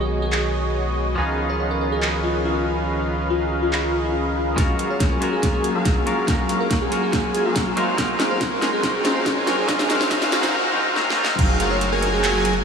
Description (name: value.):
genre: future bass.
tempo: 141 BPM.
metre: 4/4.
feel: half-time.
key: F# major.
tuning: A4 = 440 Hz.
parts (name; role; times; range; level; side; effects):
bell-like FM electric piano; melody; 0.0-12.5 s; E#4 to C#5; -28 LUFS; equal; chorus, phaser, sidechain pumping, diffuse ambient delay.
clean electric guitar; accompaniment; 0.0-11.4 s; E#3 to A#4; -26 LUFS; left 1 dB; sidechain pumping, tape echo.
airy breathy pad; sustained chords; 0.0-12.6 s; D#3 to E#5; -32 LUFS; equal; chorus, sidechain pumping.
big bright polysynth; riff; 0.0-12.5 s; F#3 to G#5; -23 LUFS; equal; chorus, sidechain pumping, tape echo.
saturated sub bass; bass; 0.0-4.6, 11.4-12.6 s; F#1 to C#2; -26 LUFS; equal; sidechain pumping.
dubstep drum kit; drums; 0.3-12.5 s; crash cymbal, handclaps, hi-hat, snare drum; -25 LUFS; equal; none.
electronic kick drum; drums; 4.6-11.5 s; none; -22 LUFS; equal; none.
riser; sound effects; 7.3-10.5 s; none; -34 LUFS; equal; none.
airy dreamy lead; arpeggios; 11.4-12.5 s; E#5 to G#5; -31 LUFS; right 1 dB; none.
room: wet huge ambient reverb, RT60 7.8 s.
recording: dreamy mix soaked in reverb, high-pass filter, small room ambience.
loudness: -18 LUFS.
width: side -6 dB against mid.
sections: 0.0-4.6 A section; 4.6-11.4 B section; 11.4-12.6 C section.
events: build-up 4.6-11.4; drum fill 4.6-10.5, 11.0-11.4; filter sweep on analog polysynth 4.6-11.4; filter sweep 4.6-11.4; drop 11.4-12.6.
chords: 0.0 B6; 1.2 C#13; 4.6 F#maj9; 7.8 G#13; 11.4 F#maj9.